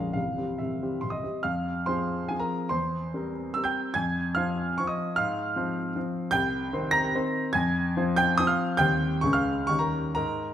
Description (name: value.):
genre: classical, romantic triple-time dance for piano with dotted rhythms.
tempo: 117-162 BPM.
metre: 3/4.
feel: rubato.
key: F minor.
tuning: A4 = 441 Hz.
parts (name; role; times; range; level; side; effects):
clear grand piano; solo; 0.0-10.5 s; Bb0 to Bb6; -25 LUFS; equal; none.
room: moderate recital hall reverb, RT60 1.6 s.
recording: none.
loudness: -25 LUFS.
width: side -10 dB against mid.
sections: 0.0-1.5 A section; 1.5-10.5 B section.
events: none.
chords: 0.2 C; 1.5 Fm; 2.7 C7/E; 4.0 Fm; 5.2 Fm/Ab; 6.3 Cm; 7.6 Fm; 8.8 Cm/Eb; 9.2 Db; 9.7 Eb7.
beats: | 0.16 0.61 1.04 | 1.45 1.88 2.31 | 2.72 3.14 3.56 | 3.96 4.37 4.79 | 5.18 5.57 5.96 | 6.34 6.74 7.16 | 7.55 7.97 8.39 | 8.80 9.24 9.69 | 10.16.